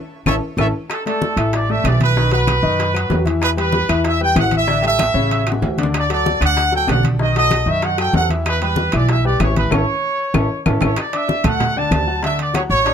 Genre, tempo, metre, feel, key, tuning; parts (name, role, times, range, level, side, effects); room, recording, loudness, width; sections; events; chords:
latin, salsa; 190 BPM; 4/4; straight; D major; A4 = 439 Hz
bright trumpet section; melody; 0.3-12.9 s; A4 to A5; -19 LUFS; right 2 dB
clear grand piano; accompaniment; 0.3-12.9 s; C#3 to D6; -22 LUFS; left 4 dB
upright bass; bass; 0.3-12.9 s; A1 to F#2; -20 LUFS; right 1 dB
bongos; percussion; 0.3-12.9 s; -28 LUFS; left 5 dB
claves; percussion; 0.3-12.7 s; -27 LUFS; left 6 dB
congas; percussion; 0.3-12.9 s; -23 LUFS; left 2 dB
timbales; percussion; 0.3-12.9 s; -27 LUFS; right 6 dB
little or no reverb; close, detailed microphones; -15 LUFS; side -8 dB against mid
0.9-11.0 A section; 11.0-12.9 B section
band accent 0.0-0.9, 9.7-11.0; drum fill 0.4-0.9, 5.0-5.9, 10.2-11.0
0.0 A; 0.9 Dsus2; 2.2 B; 3.4 Em; 4.7 A7sus4; 5.3 A6; 5.9 D; 7.2 B7; 8.5 Em; 9.7 A; 11.0 Dadd9; 12.2 Dmaj7